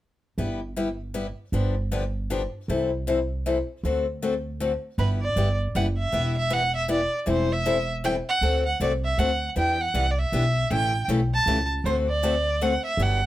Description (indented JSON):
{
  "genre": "acoustic string swing (jazz manouche)",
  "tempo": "157 BPM",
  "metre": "3/4",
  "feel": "swing 61% on 8ths",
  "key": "G major",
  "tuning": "A4 = 440 Hz",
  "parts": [
    { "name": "picked steel-string acoustic guitar", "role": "accompaniment", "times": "0.4-13.2 s", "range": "C3 to A4", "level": "-27 LUFS", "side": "left 3 dB", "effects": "none" },
    { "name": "upright bass", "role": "bass", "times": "0.4-13.3 s", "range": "E1 to E2", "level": "-26 LUFS", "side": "right 1 dB", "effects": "none" },
    { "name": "warm violin", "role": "melody", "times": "5.0-13.3 s", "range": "B4 to A5", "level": "-25 LUFS", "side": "right 2 dB", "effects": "none" }
  ],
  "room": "light reverb",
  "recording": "none",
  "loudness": "-22 LUFS",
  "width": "side -14 dB against mid",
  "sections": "0.4-5.0 A section; 5.0-13.3 B section",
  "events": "none",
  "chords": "0.4 G6; 1.5 G7; 2.7 C6; 3.8 D7; 5.0 G6; 6.1 Em; 7.3 Am7/E; 8.4 D7; 9.6 Em7; 10.7 A7; 11.8 D7",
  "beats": "| 0.38 0.76 1.15 | 1.53 1.91 2.30 | 2.68 3.06 3.45 | 3.83 4.21 4.60 | 4.98 5.36 5.75 | 6.13 6.51 6.89 | 7.27 7.66 8.04 | 8.42 8.80 9.18 | 9.56 9.95 10.33 | 10.71 11.09 11.47 | 11.85 12.23 12.61 | 12.99"
}